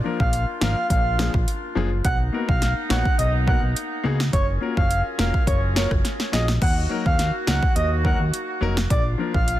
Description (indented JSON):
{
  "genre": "dancehall",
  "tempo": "105 BPM",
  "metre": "4/4",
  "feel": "straight",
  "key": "Eb minor",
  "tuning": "A4 = 440 Hz",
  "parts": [
    { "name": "warm baby grand piano", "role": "accompaniment", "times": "0.0-9.3 s", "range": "F3 to Db5", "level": "-29 LUFS", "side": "left 5 dB", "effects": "none" },
    { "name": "warm woodwind section", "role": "sustained chords", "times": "0.0-9.6 s", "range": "Gb3 to Bb4", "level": "-32 LUFS", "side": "equal", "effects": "stereo widening, sidechain pumping" },
    { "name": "downlifter", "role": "sound effects", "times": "0.0-2.0 s", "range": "none", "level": "-52 LUFS", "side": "right 1 dB", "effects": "none" },
    { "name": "breathy flute-like synth lead", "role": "melody", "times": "0.2-9.6 s", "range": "Db5 to F#5", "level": "-27 LUFS", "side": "right 1 dB", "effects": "chorus, digital delay" },
    { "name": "fat analog bass", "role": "bass", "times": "0.2-9.6 s", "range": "F1 to Eb2", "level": "-23 LUFS", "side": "equal", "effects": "none" },
    { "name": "deep house drum kit", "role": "drums", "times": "0.2-9.6 s", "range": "crash cymbal, hi-hat, kick drum, rim click, snare drum", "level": "-22 LUFS", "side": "equal", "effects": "overdrive" }
  ],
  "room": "little or no reverb",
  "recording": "dense, heavily limited modern master",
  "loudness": "-19 LUFS",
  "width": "side -14 dB against mid",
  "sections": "0.0-9.6 A section",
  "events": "drum fill 6.0-6.6",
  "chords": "0.0 Bb; 2.0 Bmaj7; 4.3 Gbmaj7; 6.6 Ebm; 8.9 Bb"
}